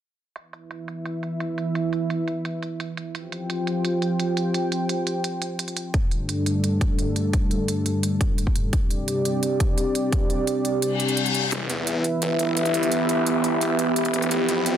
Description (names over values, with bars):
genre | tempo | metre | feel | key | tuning
dark technical drum and bass | 172 BPM | 4/4 | straight | E phrygian | A4 = 440 Hz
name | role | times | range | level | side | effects
dark analog pad | sustained chords | 0.4-14.8 s | G3 to G5 | -24 LUFS | equal | chorus, sidechain pumping
electronic hi-hat | drums | 0.4-14.7 s | none | -30 LUFS | right 3 dB | high-pass filter on hats, low-pass filter on hats, studio reverb
electronic kick drum | drums | 5.9-10.2 s | none | -22 LUFS | equal | studio reverb
reverse cymbal | sound effects | 10.9-11.5 s | none | -25 LUFS | left 6 dB | none
snarling distorted saw bass | bass | 11.5-14.8 s | E1 to F2 | -27 LUFS | left 1 dB | distortion, tube saturation, high-pass filter
ethereal airy pad | texture | 12.5-14.8 s | B3 to C6 | -24 LUFS | right 2 dB | ensemble chorus, built-in reverb, sidechain pumping
room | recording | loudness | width
moderate digital room reverb, RT60 1.1 s | dense, heavily limited modern master | -22 LUFS | side -10 dB against mid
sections
0.4-11.5 A section; 11.5-14.8 B section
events
filter sweep on drum 0.4-11.5; filter sweep on analog synth pad 0.4-11.5; kick drops out 10.8-11.5; reverse cymbal 10.9-11.5; build-up 11.5-14.8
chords
0.4 E5; 3.1 F5; 5.9 G5; 8.7 C5; 11.5 Em